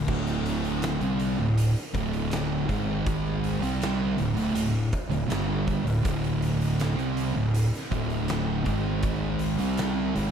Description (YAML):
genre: stoner and doom metal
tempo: 80 BPM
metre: 4/4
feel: straight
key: unclear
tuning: A4 = 439 Hz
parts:
  - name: thick fuzz guitar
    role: riff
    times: 0.0-10.3 s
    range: D2 to C4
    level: -29 LUFS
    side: left 7 dB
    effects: distortion
  - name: fuzz fingered electric bass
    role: bass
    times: 0.0-10.3 s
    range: D1 to C2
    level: -32 LUFS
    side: equal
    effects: overdrive
  - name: thick fuzz guitar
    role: riff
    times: 0.1-10.3 s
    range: D2 to C4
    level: -28 LUFS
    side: right 8 dB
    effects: distortion
  - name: oversized low-tuned drum kit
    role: drums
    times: 0.1-10.3 s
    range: crash cymbal, hi-hat, kick drum, snare drum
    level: -32 LUFS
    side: equal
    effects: none
room: light reverb, small room ambience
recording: dark, warm production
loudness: -24 LUFS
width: side -8 dB against mid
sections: 0.0-10.3 A section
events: none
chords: 0.0 D5; 2.7 G#5; 3.6 D5; 8.7 G#5; 9.6 N.C.